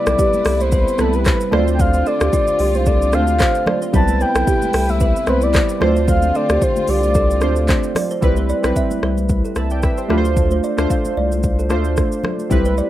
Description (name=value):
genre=afrobeats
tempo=112 BPM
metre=4/4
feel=swing 55% on 16ths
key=D dorian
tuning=A4 = 440 Hz
part: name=breathy flute-like synth lead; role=melody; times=0.0-8.0 s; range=A4 to A5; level=-20 LUFS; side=left 1 dB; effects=chorus, ping-pong delay
part: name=warm analog keys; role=accompaniment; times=0.0-12.9 s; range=G3 to A5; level=-21 LUFS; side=right 1 dB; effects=chorus
part: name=warm studio string section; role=sustained chords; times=0.0-8.2 s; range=C3 to B4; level=-29 LUFS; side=left 2 dB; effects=none
part: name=kalimba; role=riff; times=0.1-12.9 s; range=F4 to F5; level=-25 LUFS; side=right 3 dB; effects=ping-pong delay
part: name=saturated sub bass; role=bass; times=0.1-12.8 s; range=B1 to D2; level=-19 LUFS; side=equal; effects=none
part: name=afro-pop drum kit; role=drums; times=0.1-12.9 s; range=handclaps, hi-hat, kick drum, rim click, shaker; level=-20 LUFS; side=equal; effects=none
part: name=congas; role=percussion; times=0.3-12.8 s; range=none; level=-29 LUFS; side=left 1 dB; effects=none
room=light reverb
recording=rough home demo mix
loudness=-14 LUFS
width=side -13 dB against mid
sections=0.0-8.2 A section; 8.2-12.9 B section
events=none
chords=0.0 Cmaj7; 1.5 Dm7; 3.9 Cmaj7; 5.8 Dm7; 8.2 Cmaj7; 10.1 Dm7